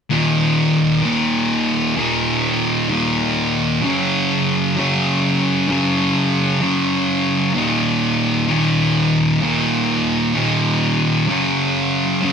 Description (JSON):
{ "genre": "rock", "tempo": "97 BPM", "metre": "3/4", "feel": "straight", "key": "Eb minor", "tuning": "A4 = 440 Hz", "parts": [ { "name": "thick fuzz guitar", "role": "solo", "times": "0.1-12.3 s", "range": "Eb2 to Gb3", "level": "-15 LUFS", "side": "equal", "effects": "distortion" } ], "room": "wet studio reverb, RT60 0.7 s", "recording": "band playing live in one room", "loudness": "-15 LUFS", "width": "side -6 dB against mid", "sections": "0.1-12.3 A section", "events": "none", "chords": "0.1 Eb5; 3.8 Gb5; 7.6 Eb5; 11.3 Gb5", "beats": "| 0.11 0.73 1.35 | 1.98 2.60 3.22 | 3.84 4.46 5.08 | 5.70 6.32 6.94 | 7.56 8.19 8.80 | 9.43 10.05 10.67 | 11.29 11.91" }